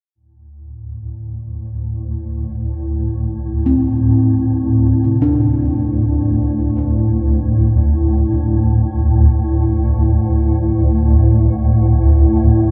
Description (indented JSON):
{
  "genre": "dark ambient drone",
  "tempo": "free time",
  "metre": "none",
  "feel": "none",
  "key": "unclear",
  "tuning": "A4 = 440 Hz",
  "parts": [
    { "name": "swarming drone", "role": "drone", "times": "0.8-12.7 s", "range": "D2 to A2", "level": "-16 LUFS", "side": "equal", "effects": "built-in reverb" },
    { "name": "gamelan-type bossed gongs", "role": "arpeggios", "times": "3.7-11.4 s", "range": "C3 to D4", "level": "-22 LUFS", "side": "equal", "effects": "tape echo" }
  ],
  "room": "wet cathedral reverb, RT60 5.0 s",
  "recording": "dark, warm production",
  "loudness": "-15 LUFS",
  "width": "mono",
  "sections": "0.2-12.7 A section",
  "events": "filter sweep on synth drone 0.2-12.7",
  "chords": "0.2 D5"
}